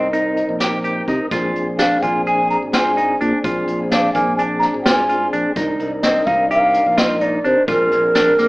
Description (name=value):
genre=progressive instrumental, band music in an uneven meter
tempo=254 BPM (eighths)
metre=9/8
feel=straight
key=Bb mixolydian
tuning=A4 = 440 Hz
part: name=mellow baroque flute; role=melody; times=0.0-8.5 s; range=Bb4 to Bb5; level=-16 LUFS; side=equal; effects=none
part: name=mellow tonewheel organ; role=accompaniment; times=0.0-8.5 s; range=C4 to G5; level=-23 LUFS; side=equal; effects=overdrive, fast rotary speaker
part: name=clean electric guitar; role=arpeggios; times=0.0-8.5 s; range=Bb3 to Ab4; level=-22 LUFS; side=right 1 dB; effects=none
part: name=modern bright fingered electric bass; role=bass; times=0.0-8.5 s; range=Ab1 to C3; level=-27 LUFS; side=equal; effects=none
part: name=jazz brush drum kit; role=drums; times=0.1-8.5 s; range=hi-hat, kick drum, snare drum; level=-22 LUFS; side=equal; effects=none
room=moderate large studio reverb, RT60 1.1 s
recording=band playing live in one room, AM radio sound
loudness=-15 LUFS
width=side -22 dB against mid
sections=0.0-8.5 A section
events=tonewheel organ fill 0.6-1.3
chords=0.0 Cm7; 1.3 Bb7; 5.6 Cm7; 7.7 Bb9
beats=0.14 0.38 0.61 0.85 1.08 | 1.32 1.55 1.79 2.03 2.26 2.50 2.73 2.97 3.21 | 3.44 3.68 3.91 4.15 4.38 4.62 4.86 5.09 5.33 | 5.56 5.80 6.03 6.27 6.50 6.74 6.98 7.21 7.45 | 7.68 7.92 8.15 8.39